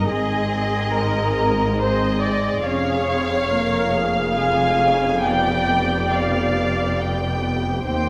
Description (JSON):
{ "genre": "classical, slow romantic movement for string orchestra", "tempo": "70 BPM", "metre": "3/4", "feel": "rubato", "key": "unclear", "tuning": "A4 = 439 Hz", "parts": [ { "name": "muted symphonic violin section", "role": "melody", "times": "0.0-8.1 s", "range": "D5 to Ab5", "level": "-29 LUFS", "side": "equal", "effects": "none" }, { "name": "muted studio violin section", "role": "second line", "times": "0.0-8.1 s", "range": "Ab4 to G5", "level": "-24 LUFS", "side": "equal", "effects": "none" }, { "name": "muted symphonic viola section", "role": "accompaniment", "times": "0.0-8.1 s", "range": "Ab3 to Bb4", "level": "-28 LUFS", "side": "equal", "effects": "none" }, { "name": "muted symphonic cello section", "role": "bass", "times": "0.0-8.1 s", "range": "Eb2 to Ab2", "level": "-28 LUFS", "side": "equal", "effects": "none" }, { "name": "muted symphonic double bass section", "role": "bass", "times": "0.0-8.1 s", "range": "F1 to Eb2", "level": "-29 LUFS", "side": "equal", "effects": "none" } ], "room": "wet concert hall reverb, RT60 2.0 s", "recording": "none", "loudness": "-20 LUFS", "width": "mono", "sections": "0.0-8.1 A section", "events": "none", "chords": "0.1 Ab; 2.7 Db/F; 5.2 G7/F" }